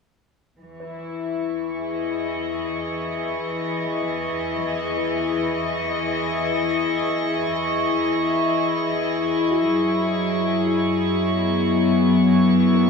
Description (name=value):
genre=ambient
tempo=53 BPM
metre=4/4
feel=straight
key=E major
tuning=A4 = 440 Hz
part: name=warm studio string section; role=sustained chords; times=0.6-12.9 s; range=E3 to D#5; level=-20 LUFS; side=left 2 dB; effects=low-pass filter, shimmer reverb
part: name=rich studio double bass section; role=bass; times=0.6-12.9 s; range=E2 to F#2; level=-38 LUFS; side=equal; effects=none
part: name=drifting glass-harmonics texture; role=texture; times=1.0-12.9 s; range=C#6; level=-29 LUFS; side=right 3 dB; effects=chorus, built-in reverb, shimmer reverb
part: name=soft round pluck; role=arpeggios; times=0.8-12.9 s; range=none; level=barely audible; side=none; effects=none
room=wet cathedral reverb, RT60 5.3 s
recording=in a vast, echoing space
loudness=-20 LUFS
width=side -5 dB against mid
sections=0.6-12.9 A section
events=fade-in on double bass section 0.6-12.9; filter sweep on string section 0.6-12.9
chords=0.6 Emaj7; 9.7 F#9sus4